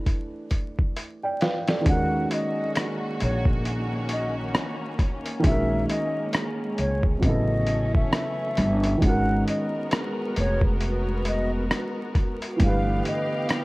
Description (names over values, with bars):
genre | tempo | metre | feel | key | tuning
lo-fi hip hop | 67 BPM | 4/4 | swing 58% on 16ths | unclear | A4 = 440 Hz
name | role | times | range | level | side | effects
dark upright piano | accompaniment | 0.0-13.6 s | C3 to G5 | -28 LUFS | right 1 dB | cassette tape
lo-fi sampler-style drum kit | drums | 0.1-13.6 s | hi-hat, kick drum, rim click, snare drum | -25 LUFS | equal | none
breathy mellow concert flute | melody | 1.9-13.5 s | Db5 to Gb5 | -30 LUFS | left 1 dB | none
muted studio string section | sustained chords | 1.9-13.6 s | Eb3 to F5 | -32 LUFS | equal | none
upright bass | bass | 1.9-13.0 s | F1 to Eb2 | -26 LUFS | equal | none
room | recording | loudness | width
light reverb | vinyl crackle | -22 LUFS | side -22 dB against mid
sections
0.0-1.9 A section; 1.9-13.6 B section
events
filter sweep on upright piano 0.0-1.9; drum fill 1.0-1.9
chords
0.0 G; 1.9 Gb69/Bb; 7.2 A7; 9.0 Abm9; 12.6 G7